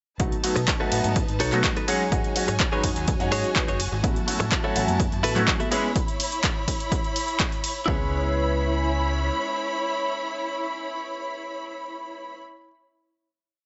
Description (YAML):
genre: filtered disco house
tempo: 125 BPM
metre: 4/4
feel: straight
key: C# minor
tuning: A4 = 440 Hz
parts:
  - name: clear grand piano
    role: accompaniment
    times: 0.2-12.4 s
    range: F#3 to B4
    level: -31 LUFS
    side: equal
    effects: phaser, sidechain pumping
  - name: warm symphonic string section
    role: sustained chords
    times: 0.2-12.4 s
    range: D#4 to B5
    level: -32 LUFS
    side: equal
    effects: sidechain pumping
  - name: overdriven fingered electric bass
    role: bass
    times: 0.2-9.3 s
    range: F#1 to B2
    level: -30 LUFS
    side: equal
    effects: tube saturation, sidechain pumping
  - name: electronic kick drum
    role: drums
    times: 0.2-8.0 s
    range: none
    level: -29 LUFS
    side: equal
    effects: none
  - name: punchy analog drum machine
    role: drums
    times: 0.2-7.7 s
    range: handclaps, hi-hat, ride cymbal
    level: -30 LUFS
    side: equal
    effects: sidechain pumping on hats, sidechain pumping on cymbals
  - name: direct-recorded clean electric guitar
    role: riff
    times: 0.6-12.4 s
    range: D#4 to E5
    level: -31 LUFS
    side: equal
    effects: sidechain pumping
  - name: egg shaker and congas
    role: percussion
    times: 4.0-5.9 s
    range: none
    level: -37 LUFS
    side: equal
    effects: sidechain pumping on perc
room: light reverb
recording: nothing above 7.9 kHz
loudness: -25 LUFS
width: mono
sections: 0.2-7.9 drop; 7.9-11.7 final chord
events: drop 0.2-7.9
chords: 0.2 B7; 1.9 G#7sus4; 4.0 F#m7/A; 5.7 C#m7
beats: | 0.20 0.68 1.16 1.64 | 2.12 2.60 3.08 3.56 | 4.04 4.52 5.00 5.48 | 5.96 6.44 6.92 7.40 | 7.88 8.36 8.84 9.32 | 9.80 10.28 10.76 11.24